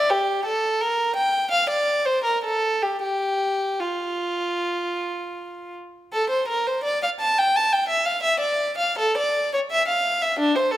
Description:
classical, baroque-style suite movement for unaccompanied violin; 75-90 BPM; 4/4; rubato; F major, D minor from 6.1 s; A4 = 441 Hz
rich violin; solo; 0.0-10.8 s; D4 to A5; -20 LUFS; equal
moderate recital hall reverb, RT60 1.5 s; -20 LUFS; side -14 dB against mid
0.0-6.1 A section; 6.1-10.8 A section
| 0.10 0.81 1.51 2.23 | 3.00 3.79 4.57 5.34 | 6.12 6.83 7.53 8.22 | 8.96 9.69 10.37

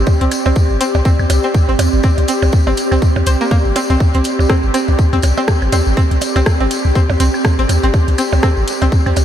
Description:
minimal techno; 122 BPM; 4/4; swing 58% on 16ths; A4 = 443 Hz
punchy sub bass; bass; 0.0-9.2 s; G1 to Eb2; -14 LUFS; equal; sidechain pumping
airy breathy pad; texture; 0.0-9.2 s; C4 to D5; -19 LUFS; equal; chorus, sidechain pumping
electronic kick drum; drums; 0.1-9.0 s; -13 LUFS; equal
percussion blips and claves; percussion; 0.1-9.2 s; -26 LUFS; right 5 dB; diffuse ambient delay
tambourine; percussion; 0.1-9.2 s; -28 LUFS; left 4 dB
string-like resonator pluck; riff; 0.2-9.1 s; Bb3 to C5; -20 LUFS; equal; chorus, sidechain pumping, analog delay
booming analog drum machine; drums; 0.2-9.2 s; hi-hat, rim click; -24 LUFS; equal
light reverb, digital ambience; -12 LUFS; side -10 dB against mid
0.0-9.2 A section
0.0 C5
| 0.07 0.56 1.05 1.54 | 2.04 2.53 3.02 3.51 | 4.00 4.50 4.99 5.48 | 5.97 6.46 6.95 7.45 | 7.94 8.43 8.92

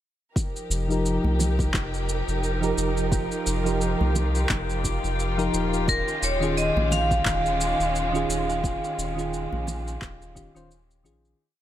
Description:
sunset chillout; 87 BPM; 4/4; swing 57% on 16ths; A4 = 439 Hz
warm symphonic string section; sustained chords; 0.4-11.4 s; Eb3 to Bb4; -31 LUFS; equal
electronic kick drum; drums; 0.4-10.5 s; -28 LUFS; equal; overdrive
electronic shaker and handclaps; drums; 0.4-11.4 s; -32 LUFS; equal; overdrive
drifting glass-harmonics texture; texture; 1.0-11.4 s; G4 to G5; -35 LUFS; left 2 dB; chorus, built-in reverb
round analog bass; bass; 0.7-11.3 s; Eb1 to C2; -27 LUFS; equal
soft electric-piano-like synth keys; accompaniment; 0.9-11.4 s; Eb3 to C5; -29 LUFS; moving between left 3 dB and right 6 dB; chorus, auto-pan, low-pass filter
congas; percussion; 1.2-9.8 s; -32 LUFS; right 3 dB
vibraphone with hard mallets; melody; 5.9-10.7 s; Bb4 to F5; -26 LUFS; equal; ping-pong delay
light reverb; -22 LUFS; side -12 dB against mid
0.4-11.4 groove
filter sweep on synth keys 0.4-11.4; fade-out 7.7-11.4
0.4 F9sus4; 5.9 Eb9sus4
| 0.36 1.05 1.74 2.43 | 3.12 3.81 4.50 5.19 | 5.88 6.57 7.26 7.95 | 8.64 9.33 10.02 10.71

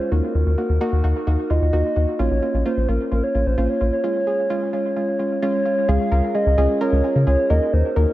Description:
synth-pop; 130 BPM; 4/4; straight; Db major; A4 = 435 Hz
hollow clarinet-like synth lead; melody; 0.0-8.1 s; Bb4 to F5; -23 LUFS; equal; chorus, dub echo
soft round pluck; accompaniment; 0.0-8.1 s; Ab3 to Bb4; -23 LUFS; right 1 dB; chorus, dub echo
rubbery square bass; bass; 0.1-8.1 s; Bb1 to Db3; -19 LUFS; equal
moderate plate reverb, RT60 2.8 s; echo-heavy mix; -18 LUFS; side -15 dB against mid
0.0-5.9 A section; 5.9-8.1 B section
0.1 Ebm; 2.2 Bbm; 4.0 Db; 7.5 Ebm
| 0.35 0.81 1.27 1.73 | 2.19 2.65 3.12 3.58 | 4.04 4.50 4.96 5.42 | 5.89 6.35 6.81 7.27 | 7.73

